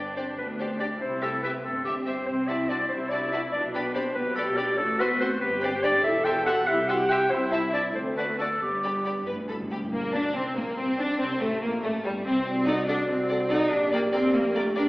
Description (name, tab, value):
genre	quick classical-period movement for symphony orchestra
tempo	95 BPM (dotted quarters)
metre	6/8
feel	straight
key	G major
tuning	A4 = 440 Hz
part	rich studio violin section	melody	0.0-14.8 s	G3 to C6	-41 LUFS	left 1 dB	none
part	clear studio violin section	second line	0.0-14.8 s	G3 to E5	-33 LUFS	equal	none
part	warm clarinet	second line	0.0-9.3 s	G4 to G5	-26 LUFS	equal	none
part	warm studio viola section	accompaniment	0.0-14.8 s	G3 to Bb4	-32 LUFS	equal	none
part	mellow French horn section	sustained chords	0.0-14.9 s	G3 to D5	-31 LUFS	equal	none
part	clear studio double bass section	bass	0.0-14.9 s	E1 to D2	-38 LUFS	equal	none
part	warm studio cello section	bass	0.0-14.8 s	C2 to Eb4	-30 LUFS	equal	none
part	timpani	percussion	8.6-10.5 s	G2	-39 LUFS	equal	none
room	wet recital hall reverb, RT60 1.4 s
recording	heard from further back in the room, AM radio sound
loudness	-24 LUFS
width	side -20 dB against mid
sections	0.0-9.9 A section; 9.9-14.9 A section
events	timpani fill 8.6-9.9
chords	0.0 G5; 1.0 C; 2.3 D7/C; 3.5 G/B; 4.8 F#dim/A; 5.4 G; 6.0 C/E; 6.7 C; 7.3 Am/C; 8.0 D; 8.6 G; 9.9 Bbadd9; 11.2 C5; 12.5 D7/C; 13.7 Gm/Bb